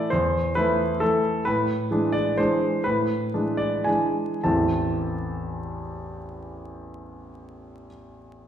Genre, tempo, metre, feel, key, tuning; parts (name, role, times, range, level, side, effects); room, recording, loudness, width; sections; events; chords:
classical, piano waltz; 99-149 BPM; 3/4; rubato; A minor; A4 = 442 Hz
clear concert grand piano; solo; 0.0-8.5 s; A1 to A5; -23 LUFS; equal
wet recital hall reverb, RT60 1.3 s; heard from further back in the room, vinyl crackle; -21 LUFS; side -9 dB against mid
0.0-4.4 A section; 4.4-7.7 B section
slowing down 0.8-4.4
0.0 Am; 1.5 E7/A; 4.4 Am